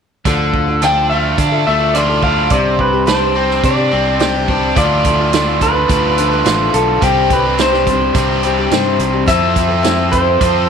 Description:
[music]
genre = folk rock and heartland rock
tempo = 106 BPM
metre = 4/4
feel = straight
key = D dorian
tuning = A4 = 442 Hz
[part]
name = picked twelve-string acoustic guitar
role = accompaniment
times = 0.3-10.7 s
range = C3 to A4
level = -20 LUFS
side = left 9 dB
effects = none
[part]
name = biting overdriven guitar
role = riff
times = 0.3-10.7 s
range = C3 to A4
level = -16 LUFS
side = right 1 dB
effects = none
[part]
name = fingered electric bass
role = bass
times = 0.3-10.7 s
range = A1 to D3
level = -19 LUFS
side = equal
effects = none
[part]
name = vintage drum kit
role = drums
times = 0.3-10.5 s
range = hi-hat, kick drum, rim click, snare drum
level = -20 LUFS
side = right 3 dB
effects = none
[part]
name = electric guitar through a small old amp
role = melody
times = 0.8-10.7 s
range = G4 to G5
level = -16 LUFS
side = equal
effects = none
[sound]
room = moderate echo chamber reverb, RT60 2.1 s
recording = 1960s-style stereo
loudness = -11 LUFS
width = side -6 dB against mid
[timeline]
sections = 0.3-4.8 A section; 4.8-10.7 B section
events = none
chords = 0.3 Dm; 2.5 Csus2; 4.8 Dm; 7.0 Csus2; 9.3 Fmaj7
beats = | 0.26 0.82 1.39 1.95 | 2.51 3.08 3.64 4.20 | 4.77 5.33 5.90 6.46 | 7.02 7.59 8.15 8.72 | 9.28 9.84 10.41

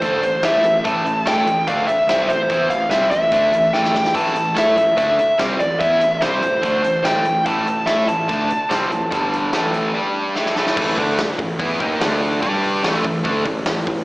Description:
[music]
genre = hard rock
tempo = 145 BPM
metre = 4/4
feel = straight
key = A minor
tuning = A4 = 440 Hz
[part]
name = dark smooth lead guitar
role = melody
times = 0.0-10.3 s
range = C5 to A5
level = -17 LUFS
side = equal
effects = overdrive, slapback echo, digital delay
[part]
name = cranked stack guitar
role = riff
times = 0.0-14.0 s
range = G2 to A4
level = -21 LUFS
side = equal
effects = overdrive, slapback echo
[part]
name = fuzz picked electric bass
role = bass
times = 0.0-14.0 s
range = G1 to A2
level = -26 LUFS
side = equal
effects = overdrive
[part]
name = big rock drum kit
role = drums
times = 0.0-14.0 s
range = crash cymbal, hi-hat, kick drum, snare drum, splash cymbal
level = -25 LUFS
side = equal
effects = none
[sound]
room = moderate club reverb, RT60 0.5 s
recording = live gig heard through the venue's PA, recital hall reverb, small speaker sound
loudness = -16 LUFS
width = side -22 dB against mid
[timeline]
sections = 0.0-10.8 A section; 10.8-14.0 B section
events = drum fill 3.7-4.1, 10.4-10.8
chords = 0.0 Am; 9.1 G5; 9.5 A5; 9.9 G5; 10.4 A5; 12.0 D5; 12.4 G5; 12.8 A5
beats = 0.02 0.43 | 0.84 1.26 1.67 2.08 | 2.50 2.91 3.32 3.74 | 4.15 4.56 4.98 5.39 | 5.80 6.22 6.63 7.05 | 7.46 7.87 8.29 8.70 | 9.12 9.53 9.94 10.36 | 10.77 11.18 11.60 12.01 | 12.42 12.83 13.25 13.66

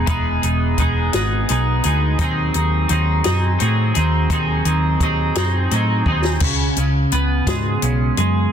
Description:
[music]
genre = indie rock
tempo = 57 BPM (dotted quarters)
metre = 6/8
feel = straight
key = unclear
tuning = A4 = 440 Hz
[part]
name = twelve-string electric guitar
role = riff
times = 0.0-8.5 s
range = C#3 to G#4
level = -20 LUFS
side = right 1 dB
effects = double-tracked left and right
[part]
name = hollow-body short-scale picked electric bass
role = bass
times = 0.0-8.5 s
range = E1 to A2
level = -19 LUFS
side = equal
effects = none
[part]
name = compact cocktail drum kit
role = drums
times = 0.1-8.3 s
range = crash cymbal, hi-hat, kick drum, snare drum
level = -23 LUFS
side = left 1 dB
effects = none
[sound]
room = light reverb, small room reverb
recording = dense, heavily limited modern master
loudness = -16 LUFS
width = side -8 dB against mid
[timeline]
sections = 0.0-6.4 A section; 6.4-8.5 B section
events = drum fill 6.1-6.4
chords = 0.0 Emaj7; 2.2 G#7/D#; 6.4 C#5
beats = | 0.08 1.14 | 2.20 3.25 | 4.31 5.36 | 6.42 7.47

